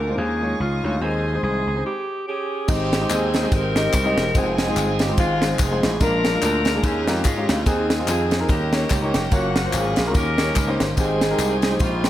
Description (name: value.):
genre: uptempo gospel.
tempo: 145 BPM.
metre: 4/4.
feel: swing 57% on 8ths.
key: Ab major.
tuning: A4 = 440 Hz.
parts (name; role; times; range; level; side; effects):
warm alto saxophone; melody; 0.0-2.7 s; F4 to Bb4; -26 LUFS; right 1 dB; analog delay.
tonewheel organ; sustained chords; 0.0-12.1 s; D3 to G5; -30 LUFS; right 3 dB; slow rotary speaker.
warm studio string section; sustained chords; 0.0-1.8 s; Eb5 to Eb6; -37 LUFS; left 3 dB; none.
gritty slap bass; bass; 0.0-12.1 s; Fb1 to Ab2; -24 LUFS; equal; overdrive.
clear concert grand piano; accompaniment; 0.1-12.1 s; Ab2 to Eb5; -26 LUFS; left 1 dB; none.
warm saxophone section; melody; 2.3-12.1 s; Ab3 to Bb4; -24 LUFS; equal; analog delay.
tight funk drum kit; drums; 2.7-12.1 s; crash cymbal, kick drum, ride cymbal, snare drum; -23 LUFS; equal; none.
tambourine and handclaps; percussion; 2.7-12.1 s; none; -33 LUFS; left 4 dB; none.
room: moderate plate reverb, RT60 1.8 s, small room ambience.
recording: dreamy mix soaked in reverb.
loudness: -18 LUFS.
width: side -13 dB against mid.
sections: 0.0-2.7 A section; 2.7-12.1 B section.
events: stop 1.8-2.7.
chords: 0.2 Eb9sus4; 1.0 Ab/Eb; 1.8 N.C.; 2.7 Abmaj7; 4.3 Fm7; 6.0 Bb7; 6.8 Eb9sus4; 7.7 Ab/Eb; 8.5 Eb7; 9.3 Gbmaj7; 10.1 Eb7; 11.0 Abmaj7.